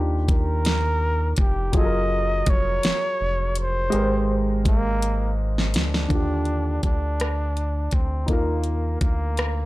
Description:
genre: slow six-eight R&B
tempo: 55 BPM (dotted quarters)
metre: 6/8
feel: straight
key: Eb major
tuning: A4 = 440 Hz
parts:
  - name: dark concert grand piano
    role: accompaniment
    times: 0.0-9.7 s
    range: D3 to C5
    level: -28 LUFS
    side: equal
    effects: none
  - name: round analog bass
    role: bass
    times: 0.0-9.7 s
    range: F1 to Eb2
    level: -24 LUFS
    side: equal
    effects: tube saturation
  - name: breathy flugelhorn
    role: melody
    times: 0.3-9.7 s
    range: Bb3 to Eb5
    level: -27 LUFS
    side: right 1 dB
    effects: none
  - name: smooth R&B drum kit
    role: drums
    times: 0.3-9.6 s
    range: hi-hat, kick drum, rim click, snare drum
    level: -22 LUFS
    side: equal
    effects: none
room: little or no reverb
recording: dry, gritty hardware recording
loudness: -20 LUFS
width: side -18 dB against mid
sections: 0.0-6.1 A section; 6.1-9.7 B section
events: drum fill 5.0-6.1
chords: 0.0 Ebmaj9; 1.7 Gbmaj9; 3.9 Abmaj9; 6.1 Ebmaj9

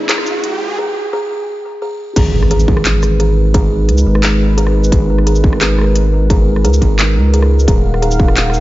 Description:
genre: half-time drum and bass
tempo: 174 BPM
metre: 4/4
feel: half-time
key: G# dorian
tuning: A4 = 440 Hz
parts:
  - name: dark analog pad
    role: sustained chords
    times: 0.0-8.6 s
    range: G#3 to F#5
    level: -19 LUFS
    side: right 1 dB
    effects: chorus, sidechain pumping
  - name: buzzing kalimba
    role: arpeggios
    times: 0.0-8.6 s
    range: G#4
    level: -20 LUFS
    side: equal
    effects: vintage 12-bit sampler grit, dub echo
  - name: riser and impact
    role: sound effects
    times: 0.0-3.5 s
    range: none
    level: -22 LUFS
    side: equal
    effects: none
  - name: industrial drum kit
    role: drums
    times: 0.1-8.6 s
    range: crash cymbal, handclaps, hi-hat, rim click, shaker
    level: -19 LUFS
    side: equal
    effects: high-pass filter on snare, studio reverb, high-pass filter on hats, high-pass filter on perc, high-pass filter on cymbals
  - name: saturated sub bass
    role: bass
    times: 2.2-8.6 s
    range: D#1 to C#2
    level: -13 LUFS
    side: equal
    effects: none
  - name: electronic kick drum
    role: drums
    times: 2.2-8.3 s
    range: none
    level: -14 LUFS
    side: equal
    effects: distortion, studio reverb
room: light reverb, digital ambience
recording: high-pass filter, nothing above 7.5 kHz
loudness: -10 LUFS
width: side -16 dB against mid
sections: 0.0-2.2 A section; 2.2-8.6 B section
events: build-up 0.0-2.2; riser 0.0-0.8; filter sweep 0.0-2.2; break 0.8-2.2; drop 2.2-8.6; impact 2.2-3.5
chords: 0.0 G#m; 7.7 D#madd9

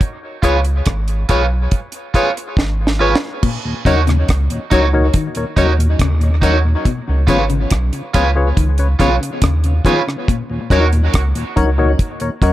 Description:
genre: dub reggae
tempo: 70 BPM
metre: 4/4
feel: straight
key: Eb minor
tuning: A4 = 440 Hz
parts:
  - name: deep reggae drum kit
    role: drums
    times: 0.0-12.5 s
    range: crash cymbal, hi-hat, kick drum, rim click, snare drum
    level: -17 LUFS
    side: equal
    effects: none
  - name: electric guitar at the edge of break-up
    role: accompaniment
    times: 0.4-10.9 s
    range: Eb4 to Db5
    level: -22 LUFS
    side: right 6 dB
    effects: wide subtle chorus, low-pass filter, dub echo
  - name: percussive organ stab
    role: stabs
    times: 0.4-12.5 s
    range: Eb4 to Db5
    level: -21 LUFS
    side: left 4 dB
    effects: chorus, low-pass filter, dub echo
  - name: warm sub bass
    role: bass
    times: 0.4-12.5 s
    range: Ab1 to Eb2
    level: -15 LUFS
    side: equal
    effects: none
  - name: semi-hollow electric guitar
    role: arpeggios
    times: 3.4-10.4 s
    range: Bb2 to Eb3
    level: -25 LUFS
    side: left 6 dB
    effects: dub echo
  - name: mellow tonewheel organ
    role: accompaniment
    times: 3.6-12.5 s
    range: Eb2 to Eb4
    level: -23 LUFS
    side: left 1 dB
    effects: overdrive, slow rotary speaker, low-pass filter, dub echo
room: light reverb, studio ambience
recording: none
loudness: -13 LUFS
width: side -14 dB against mid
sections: 0.0-3.4 A section; 3.4-12.5 B section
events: break 0.0-3.4; drum fill 2.6-3.4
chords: 0.0 Db7; 3.4 Ebm7; 6.9 Db7; 10.3 Ebm7

